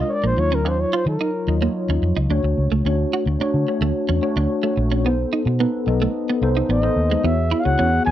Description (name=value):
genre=pop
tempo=109 BPM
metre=4/4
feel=straight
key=unclear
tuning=A4 = 438 Hz
part: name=breathy flugelhorn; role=melody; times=0.0-1.6, 6.7-8.1 s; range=Bb4 to G#5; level=-23 LUFS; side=left 1 dB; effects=none
part: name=mellow tine electric piano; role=accompaniment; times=0.0-8.1 s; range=Gb3 to Eb5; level=-22 LUFS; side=left 2 dB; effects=slow stereo tremolo, analog chorus
part: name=clean electric guitar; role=riff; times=0.0-8.1 s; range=Ab3 to F#4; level=-25 LUFS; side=right 6 dB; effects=ensemble chorus
part: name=vintage muted fingered electric bass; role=bass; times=0.2-8.1 s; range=A1 to Eb3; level=-20 LUFS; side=equal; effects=none
room=light reverb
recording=dry, close 1970s-style studio recording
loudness=-18 LUFS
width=side -12 dB against mid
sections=0.0-2.9 A section; 2.9-7.2 B section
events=flugelhorn solo 0.0-2.9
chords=0.4 Ebm9; 2.3 Dmaj7; 5.0 Cb7b9; 7.2 E69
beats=0.11 | 0.66 1.21 1.76 2.30 | 2.85 3.40 3.95 4.50 | 5.05 5.60 6.14 6.69 | 7.24 7.79